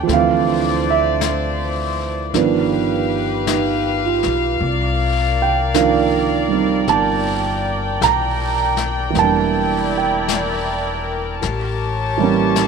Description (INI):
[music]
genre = jazz ballad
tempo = 53 BPM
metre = 4/4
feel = swing 69% on 8ths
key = unclear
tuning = A4 = 436 Hz
[part]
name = dark concert grand piano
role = accompaniment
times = 0.0-12.7 s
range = Eb3 to Bb5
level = -18 LUFS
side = right 9 dB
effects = none
[part]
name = dark studio string section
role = sustained chords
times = 0.0-12.7 s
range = D4 to A5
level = -22 LUFS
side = left 5 dB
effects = none
[part]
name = upright bass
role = bass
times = 0.0-12.7 s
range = E1 to D2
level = -24 LUFS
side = left 3 dB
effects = none
[part]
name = jazz brush drum kit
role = drums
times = 0.1-12.7 s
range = brushed snare drum, hi-hat, snare drum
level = -28 LUFS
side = left 12 dB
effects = none
[sound]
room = light reverb, small room reverb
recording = 1960s-style stereo with parts hard left and right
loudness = -16 LUFS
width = side -5 dB against mid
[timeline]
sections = 0.0-12.7 A section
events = none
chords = 0.1 Dm9; 2.3 G7b13; 4.6 Cm11; 9.1 Em7b5; 11.4 A7b9